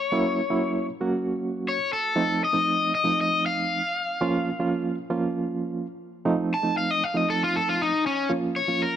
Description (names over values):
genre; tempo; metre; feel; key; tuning
blues; 117 BPM; 4/4; straight; Bb harmonic minor; A4 = 439 Hz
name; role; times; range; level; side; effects
crunchy overdriven guitar; melody; 0.0-9.0 s; Db4 to A5; -24 LUFS; left 3 dB; none
barky reed electric piano; accompaniment; 0.1-9.0 s; F3 to Gb4; -26 LUFS; right 3 dB; overdrive, fast tremolo
room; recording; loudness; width
light reverb, digital ambience; none; -23 LUFS; side -10 dB against mid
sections
0.0-8.3 A section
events
overdriven electric guitar solo 0.0-8.3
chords
0.1 Gb7; 2.2 F7; 4.2 Bbm; 6.3 F7; 8.3 Bbm